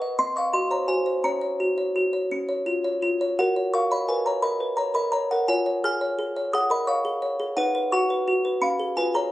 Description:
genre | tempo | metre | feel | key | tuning
classical, lullaby for music box | 57 BPM (dotted quarters) | 6/8 | rubato | F# major | A4 = 440 Hz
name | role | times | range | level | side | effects
music box | solo | 0.0-9.3 s | C4 to E#6 | -22 LUFS | equal | none
room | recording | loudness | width
light reverb | recorded on a phone in the room, studio ambience, compression | -22 LUFS | side -15 dB against mid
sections
0.0-9.3 A section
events
none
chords
0.2 Cm7b5; 1.2 F#/C#; 2.3 C#; 3.4 F#; 5.5 C#/E#; 7.6 B/D#; 8.6 C#7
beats
0.20 | 1.25 2.32 | 3.39 4.43 | 5.49 6.54 | 7.58 8.62

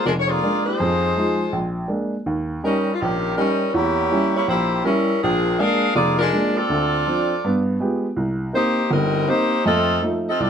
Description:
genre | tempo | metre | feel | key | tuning
jazz | 162 BPM | 4/4 | swing 63% on 8ths | Bb mixolydian | A4 = 444 Hz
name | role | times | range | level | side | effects
warm saxophone section | melody | 0.0-10.5 s | Eb3 to F5 | -20 LUFS | left 1 dB | none
warm upright piano | accompaniment | 0.1-10.5 s | F1 to G4 | -21 LUFS | right 1 dB | none
room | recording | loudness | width
moderate large studio reverb, RT60 0.8 s | close, detailed microphones | -18 LUFS | side -7 dB against mid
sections
0.0-10.5 A section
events
none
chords
0.0 Bb7; 0.8 Fm7; 1.5 Bb7; 2.3 Eb7; 3.7 Edim7; 5.2 Bb7; 6.7 Dm7; 7.4 G7b9; 8.2 Cm7; 9.7 F7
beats
0.04 0.41 | 0.78 1.15 1.52 1.89 | 2.26 2.63 3.00 3.37 | 3.74 4.11 4.48 4.85 | 5.22 5.59 5.96 6.33 | 6.70 7.07 7.44 7.81 | 8.18 8.55 8.92 9.29 | 9.66 10.03 10.40

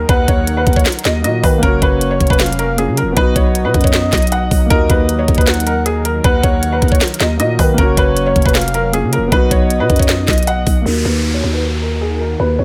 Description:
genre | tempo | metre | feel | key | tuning
hip hop, trap | 156 BPM | 4/4 | half-time | Eb minor | A4 = 440 Hz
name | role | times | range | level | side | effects
felt-muted upright piano | melody | 0.0-12.6 s | Ab4 to F#5 | -21 LUFS | equal | low-pass filter
dark grand piano | accompaniment | 0.0-12.6 s | Bb3 to Gb4 | -25 LUFS | equal | low-pass filter
warm analog pad | sustained chords | 0.0-12.6 s | Eb3 to Bb4 | -28 LUFS | equal | chorus, low-pass filter
growling 808-style bass | bass | 0.0-12.6 s | F1 to Eb3 | -20 LUFS | equal | none
impact and downlifter | sound effects | 0.0-0.1, 10.9-12.6 s | none | -26 LUFS | equal | none
breathy flute-like synth lead | second line | 0.1-10.8 s | Db5 to Gb5 | -25 LUFS | equal | chorus, tremolo, delay
trap drum kit | drums | 0.1-10.8 s | handclaps, hi-hat, kick drum, snare drum | -17 LUFS | equal | none
room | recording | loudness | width
digital ambience | none | -14 LUFS | mono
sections
0.0-10.9 A section; 10.9-12.6 B section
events
filter sweep 10.9-12.6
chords
0.0 Ebm; 1.6 Gb; 3.2 B; 4.7 Ebm; 7.8 Gb; 9.3 B; 10.9 Ebm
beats
| 0.09 0.47 0.86 1.24 | 1.63 2.01 2.40 2.78 | 3.17 3.55 3.94 4.32 | 4.71 5.09 5.47 5.86 | 6.24 6.63 7.01 7.40 | 7.78 8.17 8.55 8.94 | 9.32 9.71 10.09 10.47 | 10.86 11.24 11.63 12.01 | 12.40

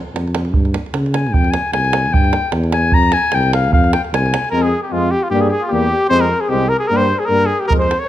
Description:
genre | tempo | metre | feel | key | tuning
balkan folk, Balkan brass band | 151 BPM | 2/4 | swing 56% on 16ths | F harmonic minor | A4 = 440 Hz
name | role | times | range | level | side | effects
mellow tuba | bass | 0.1-7.9 s | C2 to Db3 | -19 LUFS | equal | none
davul | percussion | 0.2-4.5, 7.7-8.0 s | none | -18 LUFS | right 2 dB | none
warm clarinet | second line | 1.1-8.1 s | F4 to Bb5 | -19 LUFS | left 4 dB | none
warm cornet | melody | 4.5-8.1 s | F4 to Db5 | -17 LUFS | equal | none
brilliant trombone | accompaniment | 4.5-7.9 s | G3 to Ab3 | -25 LUFS | right 6 dB | none
dark French horn | accompaniment | 4.5-7.9 s | Bb3 to C4 | -22 LUFS | left 6 dB | none
room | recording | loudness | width
moderate recital hall reverb, RT60 1.8 s | close, detailed microphones | -13 LUFS | side -13 dB against mid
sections
0.0-4.5 A section; 4.5-8.1 B section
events
clarinet solo 0.0-4.5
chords
0.0 N.C.; 0.6 Db5; 1.3 Fm; 2.1 Em; 2.9 F5; 4.5 Fm; 5.3 Edim; 6.1 Fm; 6.9 Gmadd11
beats
0.15 | 0.55 0.95 | 1.34 1.74 | 2.14 2.53 | 2.93 3.33 | 3.72 4.12 | 4.52 4.92 | 5.31 5.71 | 6.11 6.51 | 6.91 7.30 | 7.70

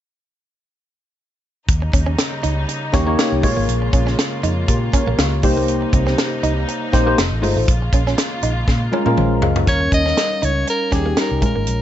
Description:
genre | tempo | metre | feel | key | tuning
polished 1980s jazz-funk pop | 120 BPM | 4/4 | swing 54% on 16ths | unclear | A4 = 440 Hz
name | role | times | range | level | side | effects
warm studio string section | sustained chords | 1.7-9.7 s | C3 to F4 | -27 LUFS | equal | none
vintage muted fingered electric bass | bass | 1.7-11.8 s | F1 to Bb2 | -20 LUFS | equal | none
tight funk drum kit | drums | 1.7-11.8 s | hi-hat, kick drum, snare drum, toms | -19 LUFS | equal | none
direct-recorded clean electric guitar | riff | 1.8-11.6 s | G3 to Eb4 | -26 LUFS | right 4 dB | wide subtle chorus
tine electric piano | accompaniment | 2.9-11.8 s | G3 to F5 | -20 LUFS | left 2 dB | lush chorus
clear soprano saxophone | melody | 9.7-11.8 s | Ab4 to Eb5 | -20 LUFS | equal | none
room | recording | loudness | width
light reverb, small room ambience | nothing above 7.9 kHz | -15 LUFS | side -11 dB against mid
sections
1.7-9.7 A section; 9.7-11.8 B section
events
drum fill 8.7-9.7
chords
1.7 Eb7; 3.4 Bbm7; 5.4 Cm7; 7.2 F7; 7.7 Bbm7; 9.7 Eb7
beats
| 1.69 2.19 2.69 3.18 | 3.68 4.18 4.68 5.18 | 5.68 6.18 6.68 7.18 | 7.68 8.18 8.68 9.18 | 9.68 10.17 10.67 11.17 | 11.67

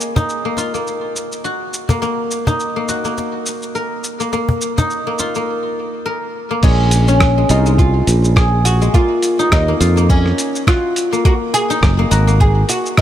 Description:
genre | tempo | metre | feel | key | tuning
organic downtempo | 104 BPM | 4/4 | swing 56% on 16ths | Bb minor | A4 = 439 Hz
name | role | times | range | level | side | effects
guzheng | arpeggios | 0.0-13.0 s | Ab3 to Bb4 | -19 LUFS | left 1 dB | tape echo
dusty soul sampler-style drum kit | drums | 0.0-13.0 s | crash cymbal, hi-hat, rim click, shaker | -22 LUFS | equal | studio ambience
cajon | percussion | 0.2-5.5 s | none | -18 LUFS | left 1 dB | none
oud | melody | 6.6-13.0 s | Db4 to Bb4 | -19 LUFS | equal | tape echo
sustaining fretless electric bass | bass | 6.6-12.6 s | Gb1 to F2 | -13 LUFS | equal | none
electronic kick drum | drums | 6.6-13.0 s | none | -13 LUFS | equal | studio ambience
room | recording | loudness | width
light reverb | none | -13 LUFS | side -11 dB against mid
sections
0.0-6.6 A section; 6.6-13.0 B section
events
break 5.5-6.6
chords
0.0 Ebmadd9; 2.0 Gb6; 4.3 F7sus4; 6.6 Bbm7; 8.9 Ebm9; 11.2 Gb6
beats
0.29 0.86 1.44 | 2.02 2.59 3.17 3.75 | 4.32 4.90 5.48 6.05 | 6.63 7.21 7.79 8.36 | 8.94 9.52 10.09 10.67 | 11.25 11.82 12.40 12.98

